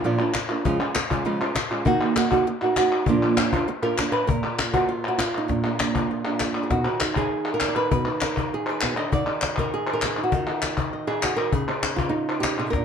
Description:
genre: flamenco.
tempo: 198 BPM.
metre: 4/4.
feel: straight.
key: Bb phrygian dominant.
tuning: A4 = 439 Hz.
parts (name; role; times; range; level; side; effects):
flamenco guitar; melody; 0.0-12.8 s; Bb2 to D#5; -23 LUFS; right 2 dB; none.
palmas hand claps; percussion; 0.2-12.7 s; none; -27 LUFS; left 2 dB; none.
cajon; percussion; 0.3-12.8 s; none; -27 LUFS; left 4 dB; none.
room: wet small room ambience, RT60 0.5 s.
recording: dark, warm production.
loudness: -21 LUFS.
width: side -7 dB against mid.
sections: 0.0-4.3 A section; 4.3-12.8 B section.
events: none.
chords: 0.0 Bb; 0.7 Db; 1.9 Ebm; 3.1 Bb; 6.7 B; 9.1 Ebm; 11.5 Dbsus2.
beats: 0.05 0.35 | 0.65 0.95 1.26 1.56 | 1.86 2.16 2.47 2.77 | 3.07 3.37 3.68 3.98 | 4.28 4.58 4.89 5.19 | 5.49 5.80 6.10 6.40 | 6.70 7.01 7.31 7.61 | 7.91 8.21 8.52 8.82 | 9.12 9.42 9.72 10.02 | 10.33 10.63 10.93 11.23 | 11.53 11.83 12.13 12.43 | 12.73.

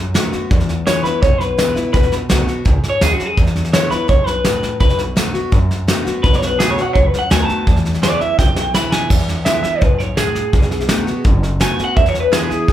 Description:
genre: rockabilly.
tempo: 168 BPM.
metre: 4/4.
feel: straight.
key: E major.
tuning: A4 = 440 Hz.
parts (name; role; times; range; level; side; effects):
picked steel-string acoustic guitar; accompaniment; 0.0-12.7 s; E2 to F#4; -22 LUFS; left 2 dB; none.
upright bass; bass; 0.0-12.7 s; F#1 to F#2; -20 LUFS; equal; none.
soft brush drum kit; drums; 0.1-12.7 s; crash cymbal, hi-hat, kick drum, snare drum; -17 LUFS; equal; none.
electric guitar through a small old amp; melody; 0.9-12.7 s; F#4 to B5; -18 LUFS; equal; phaser.
room: light reverb.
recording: band playing live in one room.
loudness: -13 LUFS.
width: side -12 dB against mid.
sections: 0.0-9.1 A section; 9.1-12.7 B section.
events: drum fill 8.4-9.1; clean electric guitar solo 9.1-12.7.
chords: 0.0 B7; 0.5 E; 1.9 B7; 3.4 E; 4.8 B7; 7.7 E; 10.5 B7; 12.0 E.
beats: 0.15 | 0.51 0.87 1.22 1.58 | 1.94 2.30 2.66 3.02 | 3.37 3.73 4.09 4.45 | 4.80 5.16 5.52 5.88 | 6.24 6.60 6.95 7.31 | 7.67 8.03 8.39 8.74 | 9.10 9.46 9.82 10.18 | 10.53 10.89 11.25 11.61 | 11.97 12.32 12.68.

